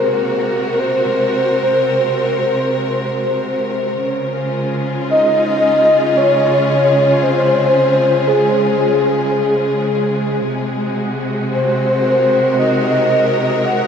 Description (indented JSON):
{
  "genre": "ambient",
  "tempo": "56 BPM",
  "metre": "3/4",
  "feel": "straight",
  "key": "Db major",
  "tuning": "A4 = 442 Hz",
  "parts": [
    { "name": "breathy flute-like synth lead", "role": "melody", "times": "0.0-13.9 s", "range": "Ab4 to Gb5", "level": "-15 LUFS", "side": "equal", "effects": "ensemble chorus, diffuse ambient delay" },
    { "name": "clear symphonic string section", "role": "sustained chords", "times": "0.0-13.9 s", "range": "C3 to Bb4", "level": "-18 LUFS", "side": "equal", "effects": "none" }
  ],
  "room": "wet huge ambient reverb, RT60 7.6 s",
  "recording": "in a vast, echoing space, cassette tape",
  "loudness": "-13 LUFS",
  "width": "side -7 dB against mid",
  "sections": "0.0-4.0 A section; 4.0-13.9 B section",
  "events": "none",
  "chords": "0.0 Ab9; 4.0 Dbmaj7; 10.4 Ab9"
}